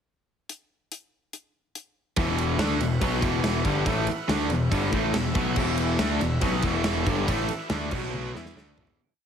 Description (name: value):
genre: hard rock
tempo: 141 BPM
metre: 4/4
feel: straight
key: E minor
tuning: A4 = 440 Hz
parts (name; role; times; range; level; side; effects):
- gated 80s drum kit; drums; 0.5-9.0 s; crash cymbal, hi-hat, kick drum, ride cymbal, snare drum, toms; -29 LUFS; equal; none
- overdriven tonewheel organ; sustained chords; 2.2-9.0 s; B3 to F#5; -39 LUFS; equal; none
- overdriven electric guitar; riff; 2.2-9.0 s; E2 to E4; -28 LUFS; left 8 dB; none
- tight distorted guitar; riff; 2.2-9.0 s; E2 to E4; -29 LUFS; right 10 dB; distortion
- fuzz picked electric bass; bass; 2.2-9.0 s; E1 to E2; -30 LUFS; equal; overdrive
room: moderate large studio reverb, RT60 0.9 s, small room ambience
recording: heavily compressed radio sound, multiband compression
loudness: -23 LUFS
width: side -8 dB against mid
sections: 0.5-2.2 pickup bar; 2.2-9.0 riff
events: fade-out 7.3-9.0; drum fill 8.1-9.0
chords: 0.5 N.C.; 2.2 Em; 7.9 B5; 8.3 E5